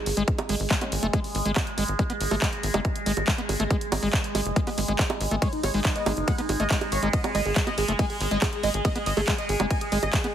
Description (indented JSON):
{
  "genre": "psychedelic trance",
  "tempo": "140 BPM",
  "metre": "4/4",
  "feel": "straight",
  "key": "unclear",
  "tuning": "A4 = 435 Hz",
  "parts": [
    { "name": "overtone-sweeping drone", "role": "sustained chords", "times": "0.0-10.3 s", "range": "G#3", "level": "-32 LUFS", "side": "right 2 dB", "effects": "chorus, built-in reverb, sidechain pumping" },
    { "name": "tight sequencer bass", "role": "bass", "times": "0.1-10.1 s", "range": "F#1 to G#1", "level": "-29 LUFS", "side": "equal", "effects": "none" },
    { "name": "big-room dance drum kit", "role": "drums", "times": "0.1-10.3 s", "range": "bongos, handclaps, hi-hat, ride cymbal", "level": "-29 LUFS", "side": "right 2 dB", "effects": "studio reverb" },
    { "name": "overdriven acid bass", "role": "riff", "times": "0.2-10.3 s", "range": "G#3 to B3", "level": "-31 LUFS", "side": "left 1 dB", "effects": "auto-pan, cassette tape, sidechain pumping, tape echo" },
    { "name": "electronic kick drum", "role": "drums", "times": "0.3-10.2 s", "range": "none", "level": "-25 LUFS", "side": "equal", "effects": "studio reverb" },
    { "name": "resonant blip pluck", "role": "second line", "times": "0.8-1.2, 6.0-7.6 s", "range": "F#3 to C#4", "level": "-44 LUFS", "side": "right 2 dB", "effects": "none" },
    { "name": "wide unison lead", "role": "melody", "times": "5.4-10.3 s", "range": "D#4 to G#5", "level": "-30 LUFS", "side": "right 1 dB", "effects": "phaser, sidechain pumping, tape echo" }
  ],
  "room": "light reverb",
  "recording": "heavily compressed radio sound",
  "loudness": "-23 LUFS",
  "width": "side -10 dB against mid",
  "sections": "0.0-10.3 A section",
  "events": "none",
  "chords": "0.0 G#5"
}